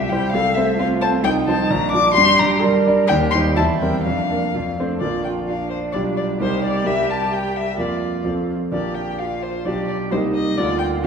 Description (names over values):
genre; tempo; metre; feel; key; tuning
quick classical-period movement for piano trio; 130 BPM; 2/4; straight; Bb major; A4 = 440 Hz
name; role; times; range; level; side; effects
muted violin; melody; 0.0-11.1 s; C5 to D6; -21 LUFS; left 5 dB; none
muted cello; second line; 0.0-11.1 s; D4 to Bb4; -25 LUFS; right 5 dB; none
clear concert grand piano; accompaniment; 0.0-11.1 s; Bb1 to D5; -20 LUFS; right 1 dB; none
room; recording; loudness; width
wet recital hall reverb, RT60 1.8 s; heard from further back in the room; -17 LUFS; side -6 dB against mid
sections
0.0-5.0 A section; 5.0-11.1 B section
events
none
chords
0.3 F/C; 1.2 F7/C; 1.7 Bb; 2.2 Gm; 3.1 Cm/Eb; 3.6 C7/E; 4.0 Bb/F; 4.5 F; 5.0 Bb; 5.9 G7/B; 6.4 Cm7; 6.9 C5; 7.8 Bb/F; 8.3 F; 8.7 Bb; 9.7 G7/B; 10.1 Cm7; 10.6 Bb/D